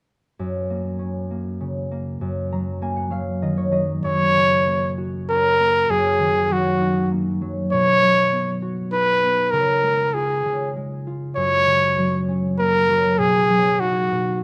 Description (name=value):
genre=children's music, lullaby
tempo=98 BPM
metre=3/4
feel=straight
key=F# major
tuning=A4 = 439 Hz
part: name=concert harp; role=accompaniment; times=0.4-14.4 s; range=F#2 to A#5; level=-26 LUFS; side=equal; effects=none
part: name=clear trumpet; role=melody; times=4.0-14.4 s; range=F#4 to C#5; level=-20 LUFS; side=equal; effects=none
room=light reverb, small room ambience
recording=rough home demo mix, lossy compression artefacts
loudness=-20 LUFS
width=mono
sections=0.4-4.0 A section; 4.0-14.4 B section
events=harp fill 2.2-4.0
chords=0.4 F#; 2.2 D#m/F#; 4.0 F#; 5.9 D#m/F#; 7.7 B; 9.5 C#; 11.4 F#; 13.2 B